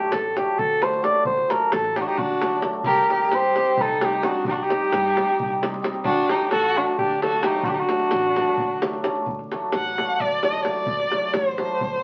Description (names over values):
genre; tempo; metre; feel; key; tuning
balkan folk, Balkan wedding band; 262 BPM (eighths); 7/8; straight; unclear; A4 = 440 Hz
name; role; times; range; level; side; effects
dark cor anglais; melody; 0.0-9.0 s; F#4 to D5; -24 LUFS; equal; none
cimbalom; accompaniment; 0.0-12.0 s; F#3 to G4; -30 LUFS; equal; none
upright bass; bass; 0.1-12.0 s; A1 to G2; -41 LUFS; equal; none
davul; percussion; 0.1-11.9 s; none; -31 LUFS; equal; none
warm violin; second line; 2.0-12.0 s; D4 to F#5; -28 LUFS; equal; none
room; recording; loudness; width
wet club reverb, RT60 0.7 s; very old 78 rpm record, vinyl crackle, nothing above 7.7 kHz; -22 LUFS; mono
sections
0.0-9.3 A section; 9.3-12.0 B section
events
violin solo 9.3-12.0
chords
0.0 D; 2.9 Cm; 6.1 D